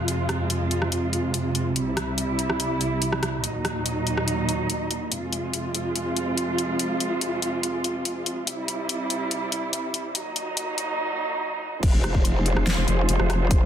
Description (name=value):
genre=heavy wobble dubstep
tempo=143 BPM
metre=4/4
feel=half-time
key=F phrygian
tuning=A4 = 440 Hz
part: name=muted studio string section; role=sustained chords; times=0.0-13.7 s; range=C2 to C5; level=-25 LUFS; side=right 1 dB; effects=sidechain pumping, low-pass filter
part: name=dubstep drum kit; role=drums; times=0.1-13.6 s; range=crash cymbal, hi-hat, rim click, snare drum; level=-28 LUFS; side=left 2 dB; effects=overdrive
part: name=growl bass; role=bass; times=11.8-13.7 s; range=F1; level=-22 LUFS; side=equal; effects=chorus, overdrive
part: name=electronic kick drum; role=drums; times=11.8-13.6 s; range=none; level=-20 LUFS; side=equal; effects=overdrive
room=moderate digital room reverb, RT60 1.1 s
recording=dense, heavily limited modern master, high-pass filter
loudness=-23 LUFS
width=side -9 dB against mid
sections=0.0-11.8 A section; 11.8-13.7 B section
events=build-up 0.0-11.8; filter sweep 0.0-11.8; drop 11.8-13.7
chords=0.0 Fm; 1.8 C; 3.4 Ebm; 5.1 Fm; 8.5 C; 10.2 Ebm; 11.8 Fm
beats=| 0.08 0.50 0.92 1.34 | 1.76 2.18 2.60 3.02 | 3.44 3.86 4.28 4.70 | 5.12 5.54 5.96 6.37 | 6.79 7.21 7.63 8.05 | 8.47 8.89 9.31 9.73 | 10.15 10.57 10.99 11.41 | 11.83 12.25 12.67 13.09 | 13.51